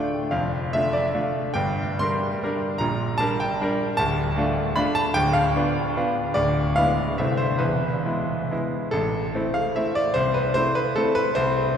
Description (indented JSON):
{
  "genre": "classical, romantic triple-time dance for piano with dotted rhythms",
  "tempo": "128-161 BPM",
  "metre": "3/4",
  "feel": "rubato",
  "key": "A minor from 4.0 s",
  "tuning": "A4 = 440 Hz",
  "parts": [
    { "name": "bright grand piano", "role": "solo", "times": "0.0-11.8 s", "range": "C1 to C6", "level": "-21 LUFS", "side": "equal", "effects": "none" }
  ],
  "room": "wet cathedral reverb, RT60 5.5 s",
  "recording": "heard from further back in the room",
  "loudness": "-21 LUFS",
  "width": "side -8 dB against mid",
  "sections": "0.0-8.9 A section; 8.9-11.8 B section",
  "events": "none",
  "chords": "0.3 Dm/F; 1.6 Gm; 2.8 Gm/Bb; 4.0 Dm; 5.2 Bdim/D; 6.4 E7/D; 7.2 Am/C; 7.6 E; 8.9 Am; 10.2 Am/C"
}